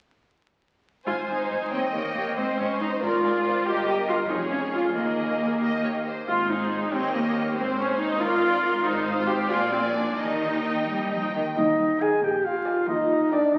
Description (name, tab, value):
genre	quick classical-period movement for symphony orchestra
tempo	92 BPM (dotted quarters)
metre	6/8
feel	rubato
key	Ab major, Eb major from 8.8 s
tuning	A4 = 440 Hz
part	warm studio violin section	melody	1.1-13.5 s	Ab4 to Ab5	-36 LUFS	equal	none
part	warm studio violin section	second line	1.1-13.5 s	G4 to Ab5	-33 LUFS	equal	none
part	rich studio viola section	accompaniment	1.1-13.5 s	Bb3 to Bb4	-28 LUFS	equal	none
part	clear studio double bass section	bass	1.1-13.6 s	F1 to Eb2	-39 LUFS	equal	none
part	warm studio cello section	bass	1.1-13.6 s	Eb2 to G3	-36 LUFS	equal	none
part	clear oboe	second line	11.6-13.6 s	D5 to Ab5	-33 LUFS	equal	none
part	mellow silver concert flute	second line	11.6-13.6 s	D5 to Ab5	-34 LUFS	equal	none
part	warm French horn section	sustained chords	11.6-13.6 s	D4 to Ab4	-24 LUFS	equal	none
part	timpani	percussion	11.6-12.2 s	Eb3	-39 LUFS	equal	none
room	wet scoring stage reverb, RT60 1.9 s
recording	very old 78 rpm record, vinyl crackle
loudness	-25 LUFS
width	mono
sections	1.1-11.6 A section; 11.6-13.6 B section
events	none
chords	1.1 Ab; 1.7 Eb7; 2.4 Ab; 3.0 Bb7; 3.7 Eb/G; 4.3 Db/F; 5.0 Ebsus4; 6.3 Ab; 6.9 Eb7; 7.6 Ab; 8.2 Bb7/Ab; 8.8 Fm7/Ab; 9.5 Bb7; 10.2 Eb; 12.2 Bb7; 12.9 Eb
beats	| 1.07 1.73 | 2.38 3.02 | 3.66 4.30 | 4.96 5.62 | 6.28 6.93 | 7.58 8.21 | 8.85 9.50 | 10.19 10.89 | 11.58 12.24 | 12.89 13.55